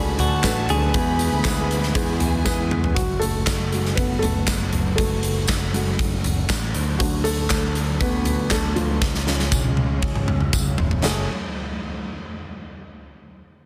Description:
piano-driven pop; 119 BPM; 4/4; straight; F# minor; A4 = 440 Hz
direct-recorded clean electric guitar; melody; 0.0-2.4 s; F#4 to G#4; -29 LUFS; equal; spring reverb
warm symphonic violin section; second line; 0.0-2.9 s; G#4 to B5; -35 LUFS; equal
felt-muted upright piano; accompaniment; 0.0-11.3 s; F#2 to D5; -29 LUFS; equal
warm studio string section; sustained chords; 0.0-11.3 s; E#3 to C#5; -38 LUFS; equal
modern bright picked electric bass; bass; 0.0-11.3 s; E#1 to E2; -26 LUFS; equal
huge arena drum kit; drums; 0.2-11.2 s; handclaps, hi-hat, kick drum, snare drum, toms; -26 LUFS; equal; soft clipping on kick
tambourine; percussion; 0.4-11.3 s; -34 LUFS; equal
light reverb, small room ambience; dense, heavily limited modern master; -22 LUFS; mono
0.0-3.0 A section; 3.0-11.0 B section; 11.0-13.1 C section
drum fill 2.5-3.0, 9.0-11.0; felt piano solo 3.0-11.0
0.0 D; 0.9 E; 3.0 F#madd9; 6.7 D; 9.0 C#; 11.0 F#madd9

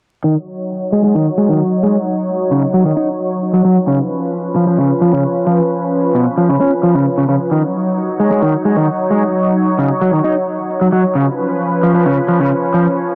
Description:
breakbeat, breaks; 132 BPM; 4/4; straight; Eb minor; A4 = 440 Hz
lush unison pad; sustained chords; 0.2-13.2 s; F3 to Db5; -19 LUFS; equal; chorus
crunchy overdriven guitar; riff; 0.2-12.8 s; Cb3 to Eb4; -16 LUFS; equal; tube saturation, low-pass filter, dub echo
shaker; drums; 0.2-13.2 s; -59 LUFS; equal
moderate studio reverb, RT60 0.5 s; vinyl crackle, low-pass filter; -15 LUFS; mono
0.2-13.2 A section
filter sweep on overdriven electric guitar 0.2-13.2; filter sweep 0.2-13.2
0.2 Ebm7; 3.9 Db7; 7.5 Ebm7; 11.2 Db7

